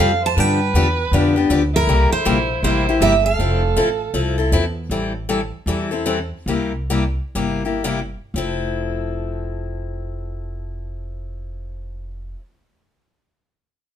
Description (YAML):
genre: acoustic string swing (jazz manouche)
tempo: 111-159 BPM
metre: 4/4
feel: swing 63% on 8ths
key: F major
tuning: A4 = 439 Hz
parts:
  - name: picked steel-string acoustic guitar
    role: melody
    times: 0.0-4.5 s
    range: Bb4 to A5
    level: -20 LUFS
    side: right 3 dB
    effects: none
  - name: warm violin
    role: second line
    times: 0.0-4.5 s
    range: E4 to C5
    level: -25 LUFS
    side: right 6 dB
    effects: none
  - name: picked steel-string acoustic guitar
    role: accompaniment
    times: 0.0-12.4 s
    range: C3 to A4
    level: -21 LUFS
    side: left 4 dB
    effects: none
  - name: upright bass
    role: bass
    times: 0.0-12.3 s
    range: F1 to G2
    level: -23 LUFS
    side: equal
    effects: none
room: moderate studio reverb, RT60 0.6 s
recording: minimal, uncompressed stereo recording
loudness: -17 LUFS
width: side -9 dB against mid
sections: 0.0-4.9 A section; 4.9-8.3 B section; 8.3-12.7 C section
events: slowing down 4.9-8.3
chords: 0.4 G7; 1.9 C7; 3.4 Fmaj7; 4.9 Am7; 6.5 C7; 8.3 Fmaj7